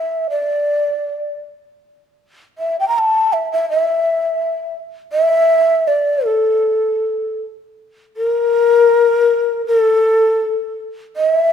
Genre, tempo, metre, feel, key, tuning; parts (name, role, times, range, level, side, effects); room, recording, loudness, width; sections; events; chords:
japanese traditional; 80 BPM; 2/4; rubato; A4 = 440 Hz
breathy mellow shakuhachi; solo; 0.0-11.5 s; A4 to Bb5; -14 LUFS; left 1 dB
light reverb; minimal, uncompressed stereo recording; -14 LUFS; side -8 dB against mid
0.0-8.2 A section; 8.2-11.5 B section